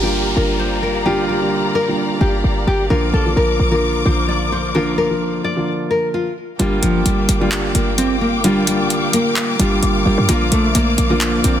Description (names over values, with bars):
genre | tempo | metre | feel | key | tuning
hip hop, trap | 130 BPM | 4/4 | half-time | G minor | A4 = 440 Hz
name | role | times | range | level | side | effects
nylon-string guitar | melody | 0.0-11.6 s | F3 to D5 | -19 LUFS | left 1 dB | ping-pong delay
dark concert grand piano | accompaniment | 0.0-11.6 s | D3 to F5 | -20 LUFS | right 1 dB | none
warm symphonic string section | sustained chords | 0.0-11.6 s | G4 to D6 | -23 LUFS | left 3 dB | none
short 808-style bass | bass | 0.0-11.6 s | G1 to G2 | -19 LUFS | equal | none
downlifter | sound effects | 0.0-2.9 s | none | -27 LUFS | equal | none
booming analog drum machine | drums | 6.6-11.6 s | handclaps, hi-hat | -21 LUFS | equal | none
room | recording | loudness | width
light reverb, studio ambience | dense, heavily limited modern master | -14 LUFS | side -10 dB against mid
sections
0.0-6.6 A section; 6.6-11.6 B section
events
stop 5.7-6.6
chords
0.0 Gm7; 2.9 Bb; 6.6 Gm7; 10.3 Bb